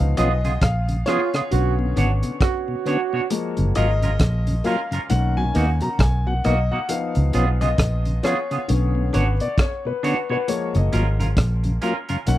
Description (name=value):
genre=roots reggae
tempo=67 BPM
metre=4/4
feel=swing 60% on 16ths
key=F# major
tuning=A4 = 440 Hz
part: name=mellow tonewheel organ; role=accompaniment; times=0.0-12.2 s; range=F#2 to E#4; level=-26 LUFS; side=left 1 dB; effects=slow rotary speaker
part: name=warm upright piano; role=stabs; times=0.0-12.4 s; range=D3 to A#5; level=-26 LUFS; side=left 5 dB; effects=none
part: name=vintage muted fingered electric bass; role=bass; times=0.0-12.4 s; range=F#1 to D#2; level=-20 LUFS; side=equal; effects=none
part: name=clean electric guitar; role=accompaniment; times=0.2-12.2 s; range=A#3 to C#5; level=-28 LUFS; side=right 5 dB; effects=spring reverb, dub echo
part: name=crunchy breakbeat drum kit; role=drums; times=0.2-12.4 s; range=hi-hat, kick drum, rim click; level=-23 LUFS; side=equal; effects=none
part: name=brilliant trombone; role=second line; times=1.1-3.3 s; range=E#4 to F#4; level=-26 LUFS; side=right 13 dB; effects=dub echo
room=little or no reverb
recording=dry, close 1970s-style studio recording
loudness=-18 LUFS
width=side -14 dB against mid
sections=0.0-12.4 A section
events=band accent 0.0-3.3; upright piano solo 0.0-12.4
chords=0.0 C#7; 1.5 Bmadd9; 3.3 F#maj7; 5.1 Bmaj7; 6.9 C#7; 8.7 Bmadd9; 10.5 F#maj7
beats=0.62 1.52 2.41 | 3.31 4.20 5.10 6.00 | 6.89 7.79 8.68 9.58 | 10.47 11.37 12.27